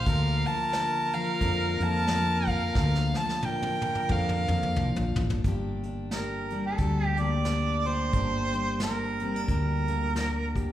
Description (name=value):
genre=acoustic folk duo or small band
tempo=89 BPM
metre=4/4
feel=swing 58% on 8ths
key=unclear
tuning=A4 = 439 Hz
part: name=rich fiddle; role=melody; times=0.0-5.2 s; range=F5 to A5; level=-30 LUFS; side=equal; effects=none
part: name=mellow harmonica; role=second line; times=0.0-10.5 s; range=A4 to D5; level=-32 LUFS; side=right 3 dB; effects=none
part: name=fingerpicked steel-string acoustic guitar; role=accompaniment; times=0.0-10.7 s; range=G2 to G4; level=-32 LUFS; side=left 2 dB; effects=none
part: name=mellow fretless electric bass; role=bass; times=0.0-10.7 s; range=G1 to F2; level=-29 LUFS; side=equal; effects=none
part: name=soft brush drum kit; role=drums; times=0.1-10.7 s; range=hi-hat, kick drum, snare drum, toms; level=-32 LUFS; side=equal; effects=none
room=wet recital hall reverb, RT60 1.6 s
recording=recorded in a church or concert hall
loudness=-25 LUFS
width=side -12 dB against mid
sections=0.0-5.4 A section; 5.4-10.7 B section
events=drum fill 2.8-5.4; harmonica solo 5.4-10.7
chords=0.1 Bb/D; 5.4 Gm